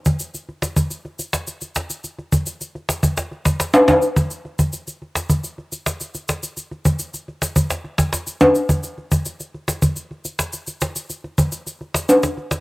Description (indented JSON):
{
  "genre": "dancehall",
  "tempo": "106 BPM",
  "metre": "4/4",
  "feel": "straight",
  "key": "none",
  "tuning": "none",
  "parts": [
    { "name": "cajon", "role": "drums", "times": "0.1-12.6 s", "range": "none", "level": "-20 LUFS", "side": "equal", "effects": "cassette tape" },
    { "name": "egg shaker and timbales", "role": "percussion", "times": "0.1-12.6 s", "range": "none", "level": "-18 LUFS", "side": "equal", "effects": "none" }
  ],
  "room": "light reverb, small room ambience",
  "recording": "home recording on cassette",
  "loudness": "-18 LUFS",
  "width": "side -21 dB against mid",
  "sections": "0.0-12.6 A section",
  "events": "kick muted 12.1-12.6",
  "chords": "none",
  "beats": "0.20 0.77 1.33 | 1.90 2.46 3.03 3.60 | 4.16 4.73 5.30 5.86 | 6.43 6.99 7.56 8.13 | 8.69 9.26 9.82 10.39 | 10.96 11.52 12.09"
}